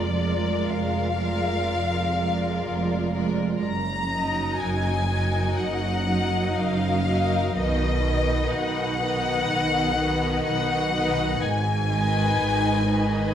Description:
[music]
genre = classical, slow romantic movement for string orchestra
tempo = 62 BPM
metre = 4/4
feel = rubato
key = Eb minor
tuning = A4 = 440 Hz
[part]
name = rich studio violin section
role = melody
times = 0.0-13.3 s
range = D5 to Bb5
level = -27 LUFS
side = left 4 dB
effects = none
[part]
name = rich studio violin section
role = second line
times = 0.0-13.3 s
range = Bb4 to Eb5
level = -32 LUFS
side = left 3 dB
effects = none
[part]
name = warm studio viola section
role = accompaniment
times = 0.0-13.3 s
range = D#3 to F4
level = -28 LUFS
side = right 2 dB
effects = none
[part]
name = rich studio cello section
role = bass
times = 0.0-13.3 s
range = F2 to B2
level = -29 LUFS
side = right 2 dB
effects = none
[part]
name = warm studio double bass section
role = bass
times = 0.0-13.3 s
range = F1 to B1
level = -28 LUFS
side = right 2 dB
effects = none
[sound]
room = wet scoring stage reverb, RT60 1.7 s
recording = none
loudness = -22 LUFS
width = side -9 dB against mid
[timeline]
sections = 0.0-13.3 A section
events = none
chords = 0.0 Bb7/F; 3.6 Ebm/Gb; 7.6 B; 11.4 Abm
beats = 0.68 1.69 2.67 | 3.64 4.62 5.61 6.60 | 7.56 8.54 9.50 10.47 | 11.44 12.40

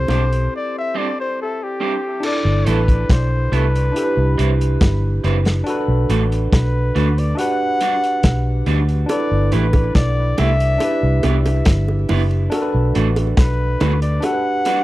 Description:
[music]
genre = lovers rock reggae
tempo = 70 BPM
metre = 4/4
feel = straight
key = G major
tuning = A4 = 440 Hz
[part]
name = warm flugelhorn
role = melody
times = 0.0-14.8 s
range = G4 to F#5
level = -23 LUFS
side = left 1 dB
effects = tape echo
[part]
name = barky tine electric piano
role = accompaniment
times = 0.0-14.8 s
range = C4 to D5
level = -24 LUFS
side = right 1 dB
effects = slapback echo
[part]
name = vintage muted fingered electric bass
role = bass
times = 0.0-14.2 s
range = F#1 to D2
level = -17 LUFS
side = equal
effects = none
[part]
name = electric guitar through a small old amp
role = stabs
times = 0.1-14.8 s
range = G3 to B4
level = -25 LUFS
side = right 5 dB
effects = spring reverb
[part]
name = crunchy breakbeat drum kit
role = drums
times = 0.1-14.8 s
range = crash cymbal, hi-hat, kick drum, snare drum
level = -18 LUFS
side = equal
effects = none
[part]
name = bongos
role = percussion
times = 0.1-0.3, 9.1-14.8 s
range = none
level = -26 LUFS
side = right 3 dB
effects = slapback echo
[sound]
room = small room ambience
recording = dry, close 1970s-style studio recording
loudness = -15 LUFS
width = side -16 dB against mid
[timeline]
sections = 0.0-2.2 A section; 2.2-14.8 B section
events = flugelhorn solo 0.0-2.2; break 0.5-2.2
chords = 0.0 D7sus4; 2.2 G69; 4.0 Cmaj7; 5.7 Bm7; 7.4 Gmaj7; 9.1 G69; 10.8 Cmaj7; 12.5 Bm7; 14.2 Gmaj7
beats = 0.53 1.38 | 2.24 3.10 3.95 4.81 | 5.67 6.52 7.38 8.24 | 9.09 9.95 10.81 11.66 | 12.52 13.38 14.23

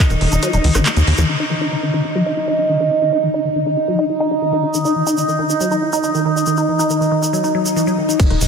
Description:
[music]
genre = psychedelic trance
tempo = 139 BPM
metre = 4/4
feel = straight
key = Eb phrygian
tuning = A4 = 440 Hz
[part]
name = overtone-sweeping drone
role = sustained chords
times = 0.0-8.5 s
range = Eb4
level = -19 LUFS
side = right 2 dB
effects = chorus, built-in reverb, sidechain pumping
[part]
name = woody wave-folded pluck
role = riff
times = 0.0-8.4 s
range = Eb3 to Fb4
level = -19 LUFS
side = moving between left 5 dB and right 3 dB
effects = chorus, auto-pan, vintage 12-bit sampler grit, sidechain pumping, diffuse ambient delay
[part]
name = tight sequencer bass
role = bass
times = 0.1-1.2, 8.3-8.5 s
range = Eb1 to Eb2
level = -16 LUFS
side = equal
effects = none
[part]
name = drum and bass drum kit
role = drums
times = 0.1-1.3, 8.2-8.5 s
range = crash cymbal, handclaps, hi-hat, rim click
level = -22 LUFS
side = equal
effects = low-pass filter on snare, low-pass filter on hats, low-pass filter on cymbals, low-pass filter on room
[part]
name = egg shaker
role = percussion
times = 0.1-1.3, 4.7-8.5 s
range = none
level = -27 LUFS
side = right 2 dB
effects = none
[part]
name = swell and impact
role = sound effects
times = 7.5-8.5 s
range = none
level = -24 LUFS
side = equal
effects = none
[part]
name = electronic kick drum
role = drums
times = 8.2-8.3 s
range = none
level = -13 LUFS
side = equal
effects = none
[sound]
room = wet huge ambient reverb, RT60 4.9 s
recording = dreamy mix soaked in reverb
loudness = -14 LUFS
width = side -6 dB against mid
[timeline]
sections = 0.0-1.3 A section; 1.3-8.2 B section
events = drop 0.0-1.3; kick drops out 0.4-1.3; band accent 0.9; filter sweep on synth arpeggio sound 1.3-8.2; swell 7.5-8.2; impact 8.2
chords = 0.0 Eb5; 1.3 N.C.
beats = 0.43 0.86 | 1.29 1.72 2.15 2.58 | 3.02 3.45 3.88 4.31 | 4.74 5.17 5.61 6.04 | 6.47 6.90 7.33 7.76 | 8.20

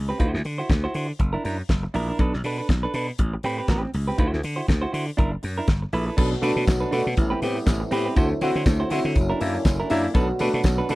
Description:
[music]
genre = disco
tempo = 121 BPM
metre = 4/4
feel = swing 56% on 16ths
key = unclear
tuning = A4 = 441 Hz
[part]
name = slap bass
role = bass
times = 0.0-10.9 s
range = F#1 to D3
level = -26 LUFS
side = equal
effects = none
[part]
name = clean electric guitar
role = accompaniment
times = 0.1-10.9 s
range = C4 to C5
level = -27 LUFS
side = right 2 dB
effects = warbly pitch drift
[part]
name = damped 70s drum kit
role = drums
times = 0.2-10.9 s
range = crash cymbal, hi-hat, kick drum, snare drum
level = -22 LUFS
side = equal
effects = none
[part]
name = clear concert grand piano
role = accompaniment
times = 6.2-10.9 s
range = A2 to G4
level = -26 LUFS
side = left 1 dB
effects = none
[part]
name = dark French horn section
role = sustained chords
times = 6.2-10.9 s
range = C3 to F#4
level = -29 LUFS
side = right 1 dB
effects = none
[part]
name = tambourine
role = percussion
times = 6.2-10.9 s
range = none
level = -44 LUFS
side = left 2 dB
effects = none
[sound]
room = little or no reverb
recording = dark, warm production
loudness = -21 LUFS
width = side -19 dB against mid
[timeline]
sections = 0.0-6.2 A section; 6.2-10.9 B section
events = none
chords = 0.2 D9; 1.2 F#7b13; 2.2 Bm7; 3.2 Am9; 4.2 D9; 5.2 F#7b13; 5.7 G69; 6.2 Bm7; 7.2 Am9; 8.2 D9; 9.2 F#7b13; 10.1 Bm7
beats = | 0.20 0.70 1.20 1.70 | 2.19 2.69 3.19 3.69 | 4.19 4.69 5.18 5.68 | 6.18 6.67 7.17 7.67 | 8.16 8.66 9.15 9.65 | 10.14 10.64

